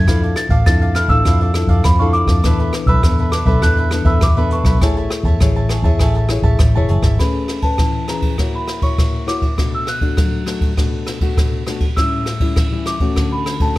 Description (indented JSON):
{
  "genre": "samba and choro",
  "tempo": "101 BPM",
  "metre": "4/4",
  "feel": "straight",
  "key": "A major",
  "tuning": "A4 = 441 Hz",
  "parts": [
    { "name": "celesta", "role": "melody", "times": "0.0-13.8 s", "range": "A5 to A6", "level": "-22 LUFS", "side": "right 1 dB", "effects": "none" },
    { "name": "cavaquinho", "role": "accompaniment", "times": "0.0-7.2 s", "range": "D4 to A5", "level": "-25 LUFS", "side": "right 3 dB", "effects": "none" },
    { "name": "nylon-string guitar", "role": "accompaniment", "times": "0.0-13.8 s", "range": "A2 to C#5", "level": "-22 LUFS", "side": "left 4 dB", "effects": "none" },
    { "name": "vintage muted fingered electric bass", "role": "bass", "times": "0.0-7.2 s", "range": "E1 to F2", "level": "-16 LUFS", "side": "equal", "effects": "none" },
    { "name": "jazz brush drum kit", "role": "drums", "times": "0.1-13.8 s", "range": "hi-hat, kick drum, ride cymbal, rim click", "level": "-17 LUFS", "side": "equal", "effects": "none" }
  ],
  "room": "light reverb",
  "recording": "none",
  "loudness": "-14 LUFS",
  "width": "side -18 dB against mid",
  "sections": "0.0-7.2 A section; 7.2-13.8 B section",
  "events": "none",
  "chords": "0.1 Dmadd9; 2.4 E7sus4; 4.8 Amaj7; 7.2 Amaj9; 8.4 F#7/A#; 9.6 Bm7; 12.0 A7; 13.2 Dmaj7"
}